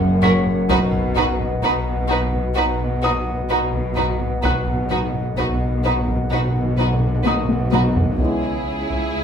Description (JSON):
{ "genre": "cinematic, suspense film score", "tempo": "64 BPM", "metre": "4/4", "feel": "straight", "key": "unclear", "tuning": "A4 = 440 Hz", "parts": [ { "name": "glass harmonica", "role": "sustained chords", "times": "0.0-9.2 s", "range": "C#4 to G#5", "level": "-27 LUFS", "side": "left 2 dB", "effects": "none" }, { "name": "muted studio double bass section", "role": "bass", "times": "0.0-9.2 s", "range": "F#1 to C#2", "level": "-27 LUFS", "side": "equal", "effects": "none" }, { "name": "muted symphonic cello section", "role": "bass", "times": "0.0-9.2 s", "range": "F#2 to C#3", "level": "-26 LUFS", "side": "equal", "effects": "none" }, { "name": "deep rumbling drone", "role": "drone", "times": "0.0-9.2 s", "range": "F#1 to C#2", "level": "-28 LUFS", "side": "equal", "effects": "built-in reverb" }, { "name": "bright concert grand piano", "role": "texture", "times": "0.0-8.2 s", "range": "C#5 to B6", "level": "-29 LUFS", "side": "left 3 dB", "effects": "none" }, { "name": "muted symphonic violin section", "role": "melody", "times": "0.2-9.2 s", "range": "G#4 to B4", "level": "-28 LUFS", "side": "right 1 dB", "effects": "none" }, { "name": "muted symphonic violin section", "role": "second line", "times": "0.2-9.2 s", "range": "E4 to F#4", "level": "-28 LUFS", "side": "right 1 dB", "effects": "none" }, { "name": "muted symphonic viola section", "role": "accompaniment", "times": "0.2-9.2 s", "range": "C#4 to E4", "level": "-25 LUFS", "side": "right 2 dB", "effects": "none" }, { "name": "taiko ensemble", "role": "drums", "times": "0.2-9.2 s", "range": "none", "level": "-26 LUFS", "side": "equal", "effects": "none" }, { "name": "timpani", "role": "percussion", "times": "0.7-8.2 s", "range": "B2", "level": "-24 LUFS", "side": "equal", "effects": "none" }, { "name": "dark French horn section", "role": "sustained chords", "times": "8.2-8.6 s", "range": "C#4 to E4", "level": "-28 LUFS", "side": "left 1 dB", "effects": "none" }, { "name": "warm trombone section", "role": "sustained chords", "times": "8.2-8.6 s", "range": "E3 to G#3", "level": "-28 LUFS", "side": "right 1 dB", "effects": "none" } ], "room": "wet stone room reverb, RT60 0.9 s", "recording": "none", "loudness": "-17 LUFS", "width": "side -7 dB against mid", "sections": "0.0-8.2 A section; 8.2-9.2 B section", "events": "timpani fill 0.7-8.2; drum fill 7.3-8.2", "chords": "0.0 F#; 0.7 B; 8.2 C#m", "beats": "| 0.69 1.63 2.57 3.50 | 4.44 5.38 6.32 7.25 | 8.19 9.13" }